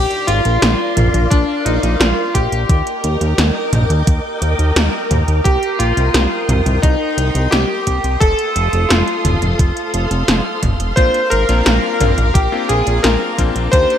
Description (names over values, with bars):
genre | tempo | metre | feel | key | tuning
synthwave | 87 BPM | 4/4 | straight | unclear | A4 = 436 Hz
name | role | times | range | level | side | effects
clear electric grand piano | melody | 0.0-14.0 s | D4 to C5 | -18 LUFS | left 1 dB | lush chorus, digital delay
string machine, full ensemble | sustained chords | 0.0-14.0 s | A4 to Eb6 | -22 LUFS | equal | ensemble chorus, sidechain pumping
fat analog bass | bass | 0.0-13.9 s | Eb1 to Eb2 | -16 LUFS | equal | sidechain pumping
80s electronic pad drums | drums | 0.1-14.0 s | hi-hat, snare drum, toms | -18 LUFS | right 1 dB | gated reverb on snare and toms
electronic kick drum | drums | 1.3-13.9 s | none | -15 LUFS | equal | overdrive
bright electric grand piano | stabs | 11.0-13.9 s | Bb3 to G4 | -22 LUFS | left 5 dB | none
room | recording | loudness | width
light reverb, digital ambience | bright 1980s-style digital production | -13 LUFS | side -9 dB against mid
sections
0.0-14.0 A section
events
none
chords
0.0 Bbadd9; 2.7 Ebmaj7; 5.5 Cm7; 8.2 F7; 11.0 Bbadd9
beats
0.63 1.32 2.01 | 2.69 3.38 4.08 4.76 | 5.45 6.14 6.83 7.52 | 8.21 8.90 9.59 10.28 | 10.97 11.66 12.35 13.04 | 13.73